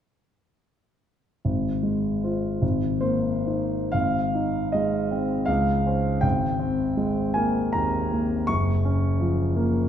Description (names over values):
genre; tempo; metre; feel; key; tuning
classical, impressionist solo piano; 61-84 BPM; 3/4; rubato; Ab major; A4 = 441 Hz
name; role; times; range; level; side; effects
clear concert grand piano; solo; 1.4-9.9 s; Gb1 to Db6; -22 LUFS; equal; none
room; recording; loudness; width
wet concert hall reverb, RT60 2.0 s; minimal, uncompressed stereo recording; -22 LUFS; side -9 dB against mid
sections
1.4-3.9 A section; 3.9-9.9 B section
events
none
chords
1.4 Ab6; 2.6 Bb9sus4/Ab; 3.9 Ab6; 5.5 Dbmaj7; 6.2 Abmaj9; 8.5 Gbmaj7